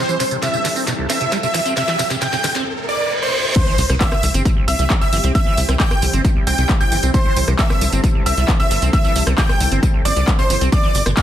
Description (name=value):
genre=uplifting trance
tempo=134 BPM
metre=4/4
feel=straight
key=C major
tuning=A4 = 445 Hz
part: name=big supersaw lead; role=melody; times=0.0-11.2 s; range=C5 to G5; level=-22 LUFS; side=right 1 dB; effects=sidechain pumping, low-pass filter, dub echo
part: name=analog string pad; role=sustained chords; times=0.0-11.2 s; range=B2 to A4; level=-28 LUFS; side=left 1 dB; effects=ensemble chorus, sidechain pumping
part: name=liquid acid bass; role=arpeggios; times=0.0-11.2 s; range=C2 to C4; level=-25 LUFS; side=right 3 dB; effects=wide subtle chorus, sidechain pumping, dub echo
part: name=riser, reverse cymbal and impact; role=sound effects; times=0.1-5.3 s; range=none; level=-25 LUFS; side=equal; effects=none
part: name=techno drum kit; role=drums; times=0.1-11.2 s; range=crash cymbal, handclaps, hi-hat, rim click, snare drum, tambourine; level=-22 LUFS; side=equal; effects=overdrive, high-pass filter on snare, studio reverb, sidechain pumping on hats, high-pass filter on hats, sidechain pumping on perc, high-pass filter on perc, sidechain pumping on cymbals, high-pass filter on cymbals
part: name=dark baby grand piano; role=second line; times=3.6-11.2 s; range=C6 to G6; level=-28 LUFS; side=right 1 dB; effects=sidechain pumping, dub echo
part: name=electronic kick drum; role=drums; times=3.6-11.2 s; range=none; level=-16 LUFS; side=equal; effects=overdrive, studio reverb
part: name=tight sequencer bass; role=bass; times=3.8-11.1 s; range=G1 to C2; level=-18 LUFS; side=equal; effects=sidechain pumping
room=light reverb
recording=dense, heavily limited modern master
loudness=-14 LUFS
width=side -11 dB against mid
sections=0.0-3.6 A section; 3.6-11.2 B section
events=build-up 0.0-3.6; drum fill 0.0-2.7; filter sweep on acid bass 0.0-3.6; riser 0.1-3.6; reverse cymbal 2.7-3.6; drop 3.6-11.2; impact 3.6-5.3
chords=0.0 C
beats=0.42 0.87 1.32 | 1.77 2.21 2.66 3.11 | 3.56 4.01 4.45 4.90 | 5.35 5.80 6.25 6.69 | 7.14 7.59 8.04 8.48 | 8.93 9.38 9.83 10.28 | 10.72 11.17